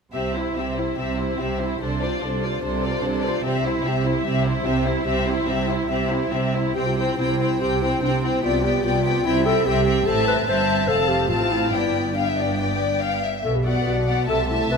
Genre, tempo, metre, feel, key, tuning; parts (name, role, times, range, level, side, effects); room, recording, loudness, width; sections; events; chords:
quick classical-period movement for symphony orchestra; 144 BPM; 4/4; rubato; C major; A4 = 440 Hz
rich chamber violin section; melody; 0.1-14.8 s; C5 to A5; -27 LUFS; left 5 dB
warm chamber violin section; second line; 0.1-14.8 s; E4 to F5; -27 LUFS; left 5 dB
clear chamber viola section; accompaniment; 0.1-14.8 s; A3 to F4; -28 LUFS; right 3 dB
warm chamber cello section; bass; 0.1-14.8 s; F2 to C3; -27 LUFS; right 3 dB
warm chamber double bass section; bass; 0.1-14.8 s; F1 to C2; -28 LUFS; right 4 dB
dark clarinet; second line; 6.8-14.8 s; D4 to C5; -24 LUFS; left 2 dB
wet scoring stage reverb, RT60 1.6 s; -19 LUFS; side -5 dB against mid
0.1-6.8 A section; 6.8-14.8 B section
0.1 C; 1.8 Dm7/C; 3.4 C; 8.4 G7/C; 9.3 C; 10.1 Am; 10.9 F; 11.7 G; 13.4 Bm